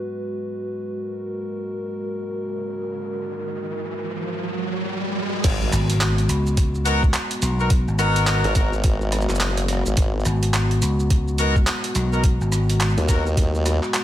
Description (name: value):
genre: glitch hop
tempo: 106 BPM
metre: 4/4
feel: swing 61% on 16ths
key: G# minor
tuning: A4 = 440 Hz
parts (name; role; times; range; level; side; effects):
- dark analog pad; sustained chords; 0.0-14.0 s; G#3 to B4; -28 LUFS; left 1 dB; chorus, sidechain pumping
- riser and impact; sound effects; 2.6-7.7 s; none; -29 LUFS; right 1 dB; none
- formant-sweep wobble bass; bass; 5.4-13.8 s; F#1 to D#2; -22 LUFS; equal; chorus, tube saturation
- boom bap sampler-style drum kit; drums; 5.4-14.0 s; crash cymbal, handclaps, hi-hat, rim click, shaker; -26 LUFS; right 1 dB; none
- electronic kick drum; drums; 5.4-13.5 s; none; -19 LUFS; equal; none
- vintage slap bass; bass; 5.7-12.9 s; G#1 to C#2; -20 LUFS; equal; none
- bright horn section; stabs; 6.9-13.3 s; B3 to A#4; -26 LUFS; left 2 dB; sidechain pumping, ping-pong delay
room: little or no reverb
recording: none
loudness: -19 LUFS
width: side -13 dB against mid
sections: 0.0-5.4 A section; 5.4-14.0 B section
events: riser 2.6-5.4; drop 5.4-14.0; impact 5.4-7.7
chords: 0.0 G#m7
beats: 0.35 | 0.92 1.48 2.05 2.61 | 3.18 3.75 4.31 4.88 | 5.44 6.01 6.58 7.14 | 7.71 8.27 8.84 9.41 | 9.97 10.54 11.10 11.67 | 12.24 12.80 13.37 13.93